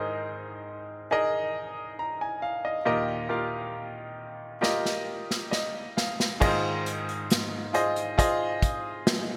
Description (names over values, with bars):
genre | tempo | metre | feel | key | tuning
pop ballad | 68 BPM | 4/4 | straight | Ab major | A4 = 440 Hz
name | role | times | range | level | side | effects
bright grand piano | accompaniment | 0.0-9.4 s | Eb2 to Bb5 | -30 LUFS | equal | none
unplugged drum kit | drums | 4.6-9.3 s | crash cymbal, hi-hat, kick drum, snare drum | -30 LUFS | equal | gated reverb
room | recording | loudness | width
moderate lush hall reverb, RT60 2.8 s | bright 1980s-style digital production | -28 LUFS | mono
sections
0.0-6.4 A section; 6.4-9.4 B section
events
drum fill 4.6-6.4; grand piano fill 5.1-6.4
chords
0.0 Absus2; 2.9 Ebadd9; 6.4 Ab6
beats
0.25 1.13 2.00 | 2.87 3.74 4.63 5.52 | 6.42 7.30 8.19 9.07